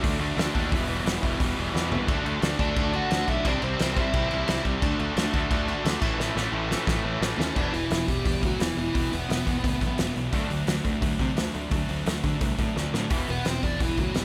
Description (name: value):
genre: punk rock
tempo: 174 BPM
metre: 4/4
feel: straight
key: E minor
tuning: A4 = 440 Hz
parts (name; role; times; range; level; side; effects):
- cranked stack guitar; riff; 0.0-14.2 s; E2 to D4; -34 LUFS; equal; overdrive
- overdriven semi-hollow guitar; riff; 0.0-14.2 s; A2 to A4; -36 LUFS; equal; none
- tight distorted guitar; riff; 0.0-14.2 s; A2 to C5; -37 LUFS; equal; distortion
- fuzz picked electric bass; bass; 0.0-14.2 s; E1 to D3; -34 LUFS; equal; overdrive
- loose indie drum kit; drums; 0.0-14.2 s; crash cymbal, hi-hat, kick drum, snare drum, toms; -30 LUFS; equal; none
- dark smooth lead guitar; melody; 2.6-4.6, 7.4-10.1, 13.3-14.2 s; E3 to F#5; -32 LUFS; equal; overdrive
room: little or no reverb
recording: none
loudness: -26 LUFS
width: mono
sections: 0.0-2.1 A section; 2.1-7.6 B section; 7.6-14.2 C section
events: drum fill 1.7-2.1, 6.2-7.6, 12.8-13.1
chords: 0.0 D; 0.7 Em; 2.1 D; 3.5 C; 4.8 D; 6.0 A; 7.6 Em; 10.3 D; 13.1 Em